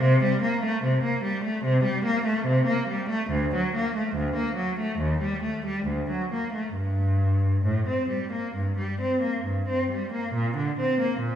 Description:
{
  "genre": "classical, baroque-style suite movement for unaccompanied cello",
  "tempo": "66-75 BPM",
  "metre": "4/4",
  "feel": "rubato",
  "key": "G minor",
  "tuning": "A4 = 440 Hz",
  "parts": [
    { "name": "clear cello", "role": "solo", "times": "0.0-11.4 s", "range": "D2 to C4", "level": "-23 LUFS", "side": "equal", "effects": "none" }
  ],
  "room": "wet recital hall reverb, RT60 1.7 s",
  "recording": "recorded in a church or concert hall, nothing above 10.5 kHz",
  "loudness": "-23 LUFS",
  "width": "side -10 dB against mid",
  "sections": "0.0-10.3 A section; 10.3-11.4 A section",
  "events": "none",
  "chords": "none",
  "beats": "| 0.04 0.85 1.66 2.48 | 3.33 4.17 5.00 5.86 | 6.75 7.65 8.56 9.46 | 10.34 11.20"
}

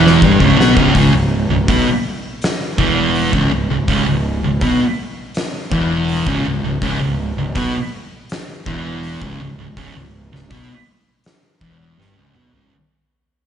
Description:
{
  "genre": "stoner and doom metal",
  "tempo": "82 BPM",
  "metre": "4/4",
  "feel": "straight",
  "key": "C# minor",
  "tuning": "A4 = 440 Hz",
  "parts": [
    { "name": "thick fuzz guitar", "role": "riff", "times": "0.0-12.7 s", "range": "C#2 to B3", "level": "-19 LUFS", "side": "left 9 dB", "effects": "distortion, slapback echo" },
    { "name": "thick fuzz guitar", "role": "riff", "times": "0.0-12.7 s", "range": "C#2 to B3", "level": "-18 LUFS", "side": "right 7 dB", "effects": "distortion, slapback echo" },
    { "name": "fuzz fingered electric bass", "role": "bass", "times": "0.0-12.7 s", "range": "C#1 to B1", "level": "-21 LUFS", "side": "equal", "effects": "overdrive, tube saturation" },
    { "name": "oversized low-tuned drum kit", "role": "drums", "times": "0.1-12.7 s", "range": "hi-hat, kick drum, snare drum, toms", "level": "-21 LUFS", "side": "equal", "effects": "none" }
  ],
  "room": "small room ambience",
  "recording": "live gig heard through the venue's PA, club reverb, nothing above 10.6 kHz",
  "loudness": "-14 LUFS",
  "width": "side -8 dB against mid",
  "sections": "1.0-12.7 A section",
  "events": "drum fill 0.0-1.0, 12.0-12.7; fade-out 1.0-12.7",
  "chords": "0.0 C#m",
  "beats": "0.23 | 0.95 1.69 2.42 3.15 | 3.88 4.62 5.35 6.09 | 6.82 7.56 8.29 9.03 | 9.77 10.51 11.24 11.98"
}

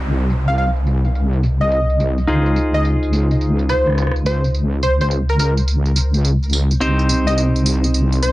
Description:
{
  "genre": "glitch hop",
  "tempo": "106 BPM",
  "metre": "4/4",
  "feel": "swing 64% on 16ths",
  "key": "unclear",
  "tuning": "A4 = 440 Hz",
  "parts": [
    { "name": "clean electric guitar", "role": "stabs", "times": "0.0-8.3 s", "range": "C4 to C5", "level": "-22 LUFS", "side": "equal", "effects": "low-pass filter, dub echo" },
    { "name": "wobble bass", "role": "bass", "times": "0.0-8.3 s", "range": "C2 to Db2", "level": "-16 LUFS", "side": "equal", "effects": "chorus" },
    { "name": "electronic tambourine and rim click", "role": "drums", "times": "0.0-8.3 s", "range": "none", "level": "-25 LUFS", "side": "right 2 dB", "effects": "low-pass filter on hats, low-pass filter on snare, low-pass filter on perc, low-pass filter on cymbals, low-pass filter on room" },
    { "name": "downlifter", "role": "sound effects", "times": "0.0-2.3 s", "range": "none", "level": "-33 LUFS", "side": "equal", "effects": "none" },
    { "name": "plucky unison lead", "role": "melody", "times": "0.5-8.3 s", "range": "Bb4 to F5", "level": "-22 LUFS", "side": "equal", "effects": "cassette tape, dub echo" }
  ],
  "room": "little or no reverb",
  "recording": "nothing above 10.9 kHz",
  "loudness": "-15 LUFS",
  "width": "side -17 dB against mid",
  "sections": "0.0-8.3 A section",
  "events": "filter sweep on clean electric guitar 0.0-8.3",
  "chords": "0.0 Cm; 2.3 Dbmaj7; 6.8 Cm",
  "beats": "| 0.02 0.58 1.15 1.72 | 2.28 2.85 3.41 3.98 | 4.54 5.11 5.68 6.24 | 6.81 7.38 7.94"
}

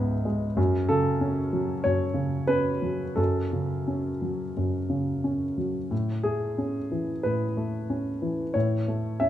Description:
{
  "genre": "neoclassical minimalist piano",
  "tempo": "90 BPM",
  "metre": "4/4",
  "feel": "uneven beats, rubato",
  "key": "unclear",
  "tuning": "A4 = 440 Hz",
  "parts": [
    { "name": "dark grand piano", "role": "solo", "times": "0.0-9.3 s", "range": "C#2 to E5", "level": "-24 LUFS", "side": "equal", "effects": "none" }
  ],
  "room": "moderate recital hall reverb, RT60 1.7 s",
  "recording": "minimal, uncompressed stereo recording",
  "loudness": "-25 LUFS",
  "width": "side -12 dB against mid",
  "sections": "0.0-9.3 A section",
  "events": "none",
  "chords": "0.0 C#5; 0.6 F#m; 5.9 Amaj7",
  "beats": "| 0.57 1.21 1.84 2.49 | 3.18 3.88 4.56 5.24 | 5.91 6.58 7.24 7.89 | 8.55 9.20"
}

